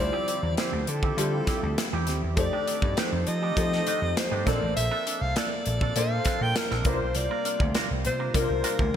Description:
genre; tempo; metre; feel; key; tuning
polished 1980s jazz-funk pop; 100 BPM; 4/4; straight; D minor; A4 = 437 Hz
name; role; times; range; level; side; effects
breathy alto saxophone; melody; 0.0-9.0 s; A4 to G5; -30 LUFS; equal; digital delay
warm grand piano; accompaniment; 0.0-9.0 s; G3 to Eb5; -32 LUFS; left 3 dB; ensemble chorus
warm analog pad; sustained chords; 0.0-9.0 s; C3 to E5; -37 LUFS; equal; chorus
vintage slap bass; bass; 0.0-8.9 s; A1 to F3; -29 LUFS; equal; none
electric guitar with an envelope filter; riff; 0.1-9.0 s; Eb3 to Bb4; -35 LUFS; right 6 dB; wide subtle chorus
modern studio drum kit; drums; 0.3-9.0 s; hi-hat, kick drum, snare drum, toms; -29 LUFS; equal; gated reverb
room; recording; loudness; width
light reverb, studio ambience; bright 1980s-style digital production; -24 LUFS; side -9 dB against mid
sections
0.0-9.0 A section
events
none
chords
0.0 Dm11; 2.4 F13; 4.5 Bbmaj9; 6.9 C9sus4

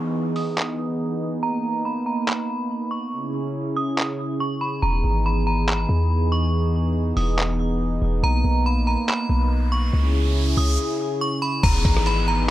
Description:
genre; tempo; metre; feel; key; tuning
hip hop, atmospheric cloud-rap; 141 BPM; 4/4; half-time; unclear; A4 = 440 Hz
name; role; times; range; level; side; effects
warm analog pad; sustained chords; 0.0-12.5 s; C#3 to G#4; -25 LUFS; right 1 dB; chorus, sidechain pumping, low-pass filter
downlifter and riser; sound effects; 0.0-1.4, 9.3-12.5 s; none; -33 LUFS; right 1 dB; none
metallic FM bell; melody; 0.4-12.5 s; A#5 to D#6; -27 LUFS; right 1 dB; chorus, low-pass filter, tape echo
lo-fi sampler-style drum kit; drums; 0.4-12.2 s; crash cymbal, handclaps, hi-hat, kick drum, rim click; -23 LUFS; equal; none
warm 808-style bass; bass; 4.8-12.5 s; E1 to E2; -21 LUFS; equal; none
room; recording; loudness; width
light reverb; none; -20 LUFS; side -14 dB against mid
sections
0.0-11.6 A section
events
break 0.0-4.8, 10.8-11.6; filter sweep 0.0-11.6; riser 9.3-11.6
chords
0.0 Emaj7; 1.4 Bmaj7; 3.1 C#m; 4.8 Emaj7; 8.2 Bmaj7; 9.9 C#m; 11.6 Emaj7

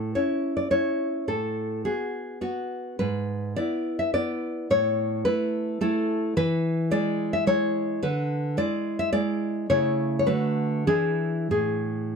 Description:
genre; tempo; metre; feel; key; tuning
romantic piece for solo classical guitar; 91-111 BPM; 3/4; rubato; unclear; A4 = 440 Hz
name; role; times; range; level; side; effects
nylon-string guitar; solo; 0.0-12.1 s; G#2 to E5; -23 LUFS; equal; none
room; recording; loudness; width
moderate studio reverb, RT60 0.6 s; dark, warm production; -23 LUFS; side -5 dB against mid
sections
0.0-12.2 A section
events
none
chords
0.0 A; 1.3 B5/A; 3.0 E/G#; 4.7 A; 6.4 E; 8.0 E7/D; 9.7 A/C#; 10.3 Bm7/D; 10.9 E7; 11.5 N.C.

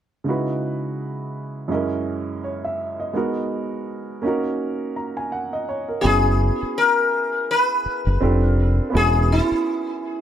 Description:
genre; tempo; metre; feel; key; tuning
R&B; 83 BPM; 4/4; swing 57% on 16ths; unclear; A4 = 440 Hz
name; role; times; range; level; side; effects
warm upright piano; accompaniment; 0.2-10.2 s; F#2 to A#5; -24 LUFS; right 2 dB; none
sitar; melody; 6.0-10.2 s; E4 to B4; -20 LUFS; left 2 dB; none
deep dub fingered electric bass; bass; 6.0-9.5 s; E1 to F#1; -18 LUFS; equal; none
room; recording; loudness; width
moderate studio reverb, RT60 0.8 s; none; -20 LUFS; side -10 dB against mid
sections
0.3-6.0 A section; 6.0-10.2 B section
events
none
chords
0.3 C#m11; 1.7 F#13; 3.1 G#m9; 4.2 D#m7; 6.0 F#7sus4; 8.2 F6; 8.9 E6

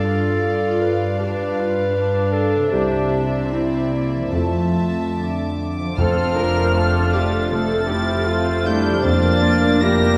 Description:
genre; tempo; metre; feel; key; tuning
cinematic; 78 BPM; 4/4; rubato; F major; A4 = 439 Hz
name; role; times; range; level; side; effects
dark clarinet; second line; 0.0-10.2 s; A3 to B4; -26 LUFS; equal; none
warm symphonic violin section; second line; 0.0-10.2 s; D4 to A5; -31 LUFS; equal; none
warm grand piano; accompaniment; 0.0-10.2 s; C2 to E5; -27 LUFS; equal; none
warm studio viola section; accompaniment; 0.0-10.2 s; F3 to G4; -29 LUFS; equal; none
concert harp; arpeggios; 0.0-10.2 s; G2 to A5; -30 LUFS; equal; none
warm studio cello section; bass; 0.0-10.2 s; F2 to Bb4; -27 LUFS; equal; none
warm symphonic violin section; melody; 5.2-10.2 s; D6 to Bb6; -30 LUFS; equal; none
dark French horn section; sustained chords; 5.2-10.2 s; D3 to Bb3; -26 LUFS; equal; none
flute section; second line; 6.0-10.2 s; F6; -30 LUFS; equal; none
dark symphonic double bass section; bass; 6.0-10.2 s; F1; -27 LUFS; equal; none
timpani; percussion; 6.0-7.1 s; F2; -29 LUFS; equal; none
room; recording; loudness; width
wet scoring stage reverb, RT60 1.9 s; heard from further back in the room; -19 LUFS; mono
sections
0.0-6.0 A section; 6.0-10.2 A section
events
none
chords
0.0 G7; 2.7 Cadd9; 4.3 Fmaj7; 6.0 F

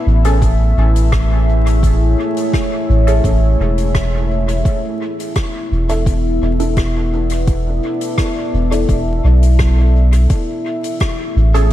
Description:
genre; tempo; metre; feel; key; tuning
ambient dub; 85 BPM; 4/4; straight; E mixolydian; A4 = 440 Hz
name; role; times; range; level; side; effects
deep dark ambient pad; sustained chords; 0.0-11.7 s; A3 to E5; -20 LUFS; left 1 dB; chorus, built-in reverb, vintage 12-bit sampler grit
soft dub sub bass; bass; 0.1-11.7 s; E1 to B1; -13 LUFS; equal; none
filtered dub chord stab; stabs; 0.2-11.7 s; C#4 to A4; -25 LUFS; right 1 dB; phaser, lush chorus, dub echo
soft-mallet drum kit; drums; 0.2-11.7 s; hi-hat, rim click; -28 LUFS; left 1 dB; studio reverb, dub echo
electronic kick drum; drums; 0.4-11.2 s; none; -17 LUFS; equal; overdrive, studio reverb
room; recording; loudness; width
light reverb, studio ambience; vinyl crackle; -13 LUFS; side -13 dB against mid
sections
0.0-11.7 A section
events
none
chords
0.0 Amaj7; 4.7 E7sus4; 10.3 Amaj7(no3)

